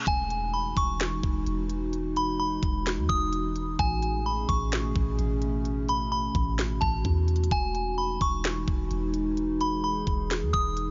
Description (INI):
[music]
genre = hip hop, atmospheric cloud-rap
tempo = 129 BPM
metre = 4/4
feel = half-time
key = unclear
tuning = A4 = 440 Hz
[part]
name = warbly tape-like pad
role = sustained chords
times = 0.0-10.9 s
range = B2 to G#4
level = -34 LUFS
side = equal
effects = chorus, built-in reverb, sidechain pumping
[part]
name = reverse cymbal and impact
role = sound effects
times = 0.0-1.9 s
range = none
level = -41 LUFS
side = equal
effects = none
[part]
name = delicate synth tine bell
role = melody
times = 0.1-10.9 s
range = G#5 to D#6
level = -32 LUFS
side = equal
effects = chorus, low-pass filter, digital delay
[part]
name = soft 808-style bass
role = bass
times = 0.1-10.9 s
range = E1 to E2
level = -33 LUFS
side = equal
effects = none
[part]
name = trap drum kit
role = drums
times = 0.1-10.9 s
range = hi-hat, kick drum, snare drum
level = -32 LUFS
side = equal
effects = none
[sound]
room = light reverb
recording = nothing above 7.4 kHz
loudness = -28 LUFS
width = mono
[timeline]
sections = 0.1-10.9 A section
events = impact 0.1-1.9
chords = 0.1 Emaj9; 3.8 Amaj9; 7.5 Emaj9